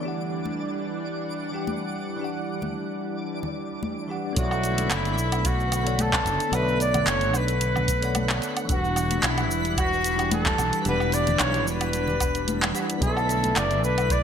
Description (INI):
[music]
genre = sunset chillout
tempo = 111 BPM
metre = 4/4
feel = swing 54% on 16ths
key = B minor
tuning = A4 = 440 Hz
[part]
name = bell-like tine electric piano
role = accompaniment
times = 0.0-14.2 s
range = E3 to G5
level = -33 LUFS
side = left 1 dB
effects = medium stereo tremolo, auto-pan, ping-pong delay
[part]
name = lush unison pad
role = sustained chords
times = 0.0-14.2 s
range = D3 to F#5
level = -31 LUFS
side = right 1 dB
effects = chorus
[part]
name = twinkling granular texture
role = texture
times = 0.0-14.2 s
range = B4 to D6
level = -38 LUFS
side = right 1 dB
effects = built-in reverb, analog chorus
[part]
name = congas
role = percussion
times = 0.5-13.5 s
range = none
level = -33 LUFS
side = left 3 dB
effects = none
[part]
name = warm flugelhorn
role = melody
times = 4.4-14.2 s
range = E4 to D5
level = -26 LUFS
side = left 1 dB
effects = ping-pong delay
[part]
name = fretless electric bass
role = bass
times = 4.4-14.2 s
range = E1 to B1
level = -27 LUFS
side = equal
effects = none
[part]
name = electronic kick drum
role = drums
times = 4.4-14.2 s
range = none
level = -28 LUFS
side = equal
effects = none
[part]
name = smooth R&B drum kit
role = drums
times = 4.4-14.2 s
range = handclaps, hi-hat, shaker, woodblock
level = -27 LUFS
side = right 1 dB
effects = gated reverb
[sound]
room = moderate plate reverb, RT60 1.3 s, digital ambience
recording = bright 1980s-style digital production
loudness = -22 LUFS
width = side -8 dB against mid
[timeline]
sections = 0.0-4.4 A section; 4.4-14.2 B section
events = none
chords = 0.0 Em9; 4.4 Bm11; 8.7 Em9; 13.0 Bm11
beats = | 0.04 0.59 1.13 1.67 | 2.21 2.75 3.29 3.83 | 4.37 4.91 5.45 5.99 | 6.53 7.07 7.61 8.15 | 8.69 9.23 9.78 10.32 | 10.86 11.40 11.94 12.48 | 13.02 13.56 14.10